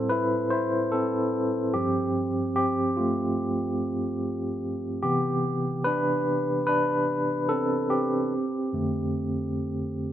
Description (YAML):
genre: R&B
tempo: 73 BPM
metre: 4/4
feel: straight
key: unclear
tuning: A4 = 443 Hz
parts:
  - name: tine electric piano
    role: solo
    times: 0.0-10.1 s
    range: F2 to C5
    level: -24 LUFS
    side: equal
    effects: medium tremolo
room: light reverb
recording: none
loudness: -24 LUFS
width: side -11 dB against mid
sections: 0.0-10.1 A section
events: tine electric piano solo 0.0-10.1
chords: 0.0 Am7; 1.7 G7sus4; 5.0 Cmaj9; 8.3 F6